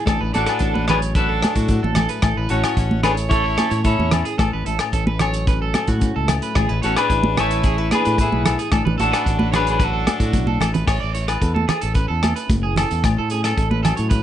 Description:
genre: highlife guitar band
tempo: 111 BPM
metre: 4/4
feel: straight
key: A major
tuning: A4 = 439 Hz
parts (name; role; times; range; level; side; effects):
- flamenco guitar; accompaniment; 0.0-14.2 s; A2 to A4; -27 LUFS; left 4 dB; none
- electric guitar at the edge of break-up; arpeggios; 0.0-14.2 s; F#4 to D5; -26 LUFS; right 7 dB; wide subtle chorus, slapback echo
- fingered electric bass; bass; 0.1-14.2 s; F#1 to A2; -22 LUFS; equal; none
- warm soul drum kit; drums; 0.1-14.2 s; crash cymbal, hi-hat, kick drum, rim click; -23 LUFS; equal; none
- agogo bells; percussion; 0.1-14.0 s; none; -28 LUFS; left 14 dB; none
- clean electric guitar; melody; 0.3-10.6 s; E4 to C#5; -22 LUFS; left 1 dB; none
- raspy alto saxophone; second line; 0.3-10.6 s; B3 to E4; -30 LUFS; left 5 dB; none
- congas; percussion; 0.4-14.0 s; none; -22 LUFS; right 3 dB; none
room: light reverb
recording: nothing above 10.3 kHz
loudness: -17 LUFS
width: side -11 dB against mid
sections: 0.0-10.9 A section; 10.9-14.2 B section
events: drum fill 10.3-10.9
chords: 0.1 D/A; 2.2 A; 4.4 F#m/A; 6.6 E/A; 8.7 D/A; 10.9 A; 13.0 F#m/A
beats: | 0.07 0.61 1.15 1.69 | 2.23 2.78 3.32 3.86 | 4.40 4.94 5.48 6.02 | 6.56 7.10 7.64 8.18 | 8.72 9.26 9.80 10.34 | 10.88 11.42 11.96 12.49 | 13.03 13.57 14.11

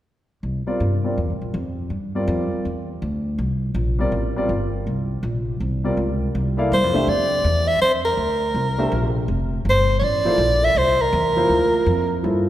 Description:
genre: modal jazz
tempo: 163 BPM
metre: 4/4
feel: swing 64% on 8ths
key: C mixolydian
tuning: A4 = 440 Hz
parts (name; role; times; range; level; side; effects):
- upright bass; bass; 0.4-12.5 s; F1 to G2; -22 LUFS; equal; none
- warm grand piano; accompaniment; 0.7-12.5 s; F3 to F5; -24 LUFS; equal; none
- breathy soprano saxophone; melody; 6.7-12.1 s; Bb4 to E5; -19 LUFS; equal; none
room: wet church reverb, RT60 2.8 s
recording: recorded in a church or concert hall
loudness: -18 LUFS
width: side -13 dB against mid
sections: 0.4-6.3 A section; 6.3-12.5 B section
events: none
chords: 0.4 C9sus4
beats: | 0.44 0.81 1.18 1.54 | 1.91 2.28 2.65 3.02 | 3.39 3.76 4.13 4.50 | 4.86 5.23 5.60 5.97 | 6.34 6.71 7.08 7.45 | 7.81 8.18 8.55 8.92 | 9.29 9.66 10.03 10.39 | 10.76 11.13 11.50 11.87 | 12.24

